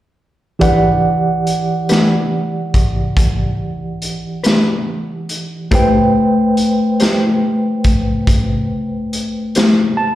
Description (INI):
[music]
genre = slow blues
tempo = 47 BPM (dotted quarters)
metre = 12/8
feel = straight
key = E minor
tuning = A4 = 440 Hz
[part]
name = barky tine electric piano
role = accompaniment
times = 0.6-10.2 s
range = E3 to A5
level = -16 LUFS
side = right 1 dB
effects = medium tremolo
[part]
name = mellow electric guitar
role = accompaniment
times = 0.6-9.8 s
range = E3 to C5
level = -20 LUFS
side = left 3 dB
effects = harmonic tremolo, slapback echo
[part]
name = raw garage drum kit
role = drums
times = 0.6-9.8 s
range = hi-hat, kick drum, snare drum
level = -16 LUFS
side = equal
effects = none
[sound]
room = moderate club reverb, RT60 0.6 s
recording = live gig heard through the venue's PA, recital hall reverb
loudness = -13 LUFS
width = side -14 dB against mid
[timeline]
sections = 0.6-10.2 A section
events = tine electric piano fill 9.5-10.2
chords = 0.6 Em7; 5.7 Am7